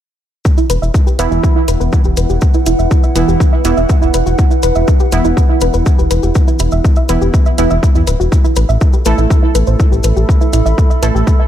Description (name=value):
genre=melodic techno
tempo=122 BPM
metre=4/4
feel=straight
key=unclear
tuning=A4 = 440 Hz
part: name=electronic kick drum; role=drums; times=0.5-11.4 s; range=none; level=-11 LUFS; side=equal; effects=overdrive
part: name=maracas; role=percussion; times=0.5-11.4 s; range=none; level=-29 LUFS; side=left 6 dB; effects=none
part: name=warbly tape-like pad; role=texture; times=1.6-11.5 s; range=E4 to B5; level=-22 LUFS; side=right 2 dB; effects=chorus, built-in reverb, sidechain pumping
part: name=soft round pluck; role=arpeggios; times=0.6-11.5 s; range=E4 to E5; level=-19 LUFS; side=right 2 dB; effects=chorus, sidechain pumping, digital delay
part: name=round analog bass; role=bass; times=0.7-11.2 s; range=D1 to E2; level=-14 LUFS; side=equal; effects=tube saturation, sidechain pumping
part: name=electronic hi-hat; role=drums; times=0.7-11.1 s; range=none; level=-25 LUFS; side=right 3 dB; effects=overdrive, sidechain pumping on hats
part: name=synth brass stab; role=stabs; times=1.2-11.5 s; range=E3 to A4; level=-20 LUFS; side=right 3 dB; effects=chorus, sidechain pumping, digital delay
room=digital ambience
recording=none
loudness=-10 LUFS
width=side -11 dB against mid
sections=0.5-11.5 A section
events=none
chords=0.5 Emadd9; 8.3 A5